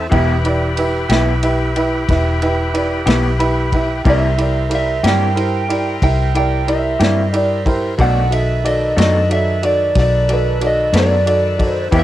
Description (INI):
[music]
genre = slow blues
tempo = 61 BPM (dotted quarters)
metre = 12/8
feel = straight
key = unclear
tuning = A4 = 436 Hz
[part]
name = warm upright piano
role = accompaniment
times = 0.0-12.0 s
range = D#4 to B5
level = -20 LUFS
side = right 2 dB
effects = none
[part]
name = overdriven tonewheel organ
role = sustained chords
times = 0.0-12.0 s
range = D#3 to C5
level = -26 LUFS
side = left 1 dB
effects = slow rotary speaker
[part]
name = vintage muted fingered electric bass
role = bass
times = 0.0-12.0 s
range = E1 to G2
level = -18 LUFS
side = left 1 dB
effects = none
[part]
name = electric guitar through a small old amp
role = accompaniment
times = 0.1-12.0 s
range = B2 to G4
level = -20 LUFS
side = left 2 dB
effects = tremolo
[part]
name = warm soul drum kit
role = drums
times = 0.1-12.0 s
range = kick drum, ride cymbal, snare drum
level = -22 LUFS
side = left 1 dB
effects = cassette tape
[part]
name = lightly driven lead guitar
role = melody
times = 4.1-12.0 s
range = B4 to G5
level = -18 LUFS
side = right 2 dB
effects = cassette tape
[sound]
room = light reverb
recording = home recording on cassette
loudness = -13 LUFS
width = side -13 dB against mid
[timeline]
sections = 0.0-12.0 A section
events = upright piano fill 3.1-4.0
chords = 0.1 Em; 4.0 C7; 8.0 B7#9